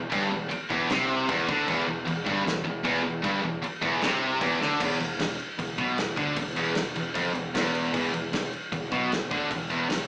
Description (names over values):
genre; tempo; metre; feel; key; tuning
heavy metal; 153 BPM; 4/4; straight; E minor; A4 = 440 Hz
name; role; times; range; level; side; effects
distorted electric guitar; riff; 0.0-10.1 s; E2 to D3; -34 LUFS; equal; distortion
heavy high-gain guitar; riff; 0.0-4.8 s; E2 to D3; -32 LUFS; equal; distortion
high-gain distorted guitar; riff; 0.0-10.1 s; E2 to D3; -32 LUFS; equal; distortion
growling picked electric bass; bass; 0.0-10.1 s; E1 to D2; -40 LUFS; equal; overdrive
modern studio drum kit; drums; 0.1-10.0 s; crash cymbal, kick drum, snare drum; -34 LUFS; equal; none
room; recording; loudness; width
moderate large studio reverb, RT60 0.8 s; band playing live in one room, small speaker sound; -27 LUFS; mono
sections
0.0-4.8 A section; 4.8-10.1 B section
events
half time 0.0-4.8; drum fill 4.6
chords
0.0 Em; 4.8 E5